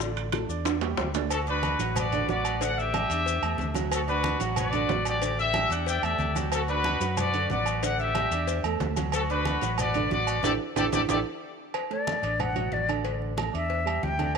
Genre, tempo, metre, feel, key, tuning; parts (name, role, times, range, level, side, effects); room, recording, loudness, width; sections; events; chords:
latin, salsa; 184 BPM; 4/4; straight; D major; A4 = 440 Hz
clear grand piano; accompaniment; 0.0-14.4 s; D3 to D6; -32 LUFS; right 12 dB
fingered electric bass; bass; 0.0-14.4 s; A1 to F#2; -31 LUFS; left 1 dB
bongos and cowbell; percussion; 0.0-14.4 s; -36 LUFS; left 15 dB
congas; percussion; 0.0-14.4 s; -37 LUFS; left 2 dB
maracas; percussion; 0.0-11.2 s; -40 LUFS; left 18 dB
timbales and agogo bells; percussion; 0.2-14.4 s; -33 LUFS; right 12 dB
bright trumpet section; melody; 1.3-11.2 s; F#4 to G5; -28 LUFS; left 3 dB
bright concert flute; melody; 11.9-14.4 s; D5 to G5; -30 LUFS; left 4 dB
light reverb, studio ambience; 1960s-style stereo with parts hard left and right; -24 LUFS; side -6 dB against mid
0.0-1.3 A section; 1.3-11.7 B section; 11.7-14.4 C section
drum fill 0.7-1.3, 11.3-11.7; band accent 10.4-11.7; flute solo 11.7-14.4
0.0 A7sus4; 1.3 D6; 2.6 A7sus4; 3.9 D6; 5.2 A7sus4; 6.5 D6; 7.8 A7sus4; 9.1 D6; 10.4 A7sus4; 11.7 D; 13.1 A7sus4